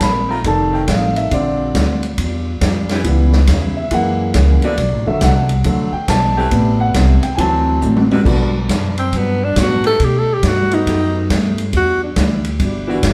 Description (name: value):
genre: jazz, big band swing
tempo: 138 BPM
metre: 4/4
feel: swing 65% on 8ths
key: G major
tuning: A4 = 442 Hz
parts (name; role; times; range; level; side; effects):
- clear concert grand piano; accompaniment; 0.0-13.0 s; C3 to B5; -21 LUFS; equal; none
- picked steel-string acoustic guitar; accompaniment; 0.0-13.1 s; F#2 to A4; -27 LUFS; equal; none
- upright bass; bass; 0.0-13.1 s; F1 to B2; -19 LUFS; equal; none
- swinging big-band drum kit; drums; 0.0-13.1 s; crash cymbal, hi-hat, kick drum, ride cymbal, snare drum, toms; -23 LUFS; equal; none
- edgy saxophone section; sustained chords; 0.3-13.0 s; D3 to G4; -28 LUFS; equal; none
- breathy tenor saxophone; melody; 9.0-12.1 s; B3 to A4; -19 LUFS; equal; none
room: wet large studio reverb, RT60 0.9 s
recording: heard from further back in the room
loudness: -15 LUFS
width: mono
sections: 0.0-8.3 A section; 8.3-13.1 A section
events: grand piano solo 0.0-8.3; drum fill 7.8-8.3; tenor saxophone solo 8.3-13.1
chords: 0.4 F7; 1.3 Bb6; 3.0 C#m7b5; 3.9 F#7; 4.8 Bm7; 6.5 Am7; 7.4 D7; 8.3 Gmaj7; 10.0 B7b13; 11.7 Em9